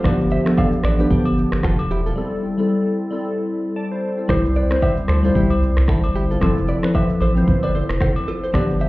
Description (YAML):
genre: afrobeats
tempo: 113 BPM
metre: 4/4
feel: swing 58% on 16ths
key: unclear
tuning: A4 = 440 Hz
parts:
  - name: glassy digital keys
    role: accompaniment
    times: 0.0-8.9 s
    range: F3 to A5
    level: -20 LUFS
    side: left 1 dB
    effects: chorus
  - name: round analog bass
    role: bass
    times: 0.0-8.9 s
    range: E1 to D2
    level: -20 LUFS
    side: equal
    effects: none
  - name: afro-pop drum kit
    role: drums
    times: 0.0-8.9 s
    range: finger snaps, kick drum, rim click, shaker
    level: -22 LUFS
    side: equal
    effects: none
  - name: agogo bells and woodblock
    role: percussion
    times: 0.0-8.7 s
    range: none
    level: -32 LUFS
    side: left 2 dB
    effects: none
  - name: direct-recorded clean electric guitar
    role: riff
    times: 0.1-8.9 s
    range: D4 to F5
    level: -27 LUFS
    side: right 2 dB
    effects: tape echo
room: light reverb, digital ambience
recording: heard muffled through a wall, club reverb, EQ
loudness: -16 LUFS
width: side -19 dB against mid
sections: 0.0-8.9 A section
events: break 2.2-4.3; synth keys fill 3.5-4.3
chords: 0.0 G7; 2.2 Am7; 4.3 C; 6.4 Fmaj7